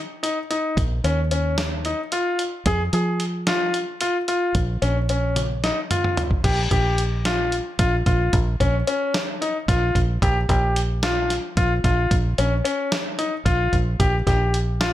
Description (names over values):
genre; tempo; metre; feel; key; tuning
progressive instrumental, band music in an uneven meter; 222 BPM (eighths); 7/8; straight; Bb dorian; A4 = 443 Hz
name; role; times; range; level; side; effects
fingered electric bass; bass; 0.0-14.9 s; Bb1 to F3; -22 LUFS; equal; none
bright grand piano; arpeggios; 0.2-14.9 s; Db4 to Ab4; -23 LUFS; left 2 dB; none
dusty soul sampler-style drum kit; drums; 0.2-14.9 s; crash cymbal, hi-hat, kick drum, snare drum, toms; -24 LUFS; equal; none
room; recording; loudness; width
light reverb, digital ambience; none; -19 LUFS; side -13 dB against mid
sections
0.0-6.4 A section; 6.4-14.9 B section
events
drum fill 5.4-6.4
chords
0.0 Eb7(no3); 2.7 Fm; 4.6 Bbm; 6.4 Gm7/Bb; 8.3 Bbm; 10.2 Gm7/Bb; 12.1 Bbm; 14.0 Gm7/Bb